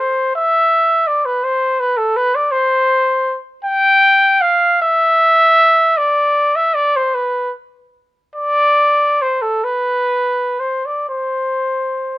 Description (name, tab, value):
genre	classical, free, expressive piece for unaccompanied trumpet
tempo	39-55 BPM (dotted quarters)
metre	6/8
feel	rubato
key	C major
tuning	A4 = 440 Hz
part	warm trumpet	solo	0.0-12.2 s	A4 to G5	-12 LUFS	equal	none
room	little or no reverb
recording	close, detailed microphones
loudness	-12 LUFS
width	side -16 dB against mid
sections	0.0-12.2 A section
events	none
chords	none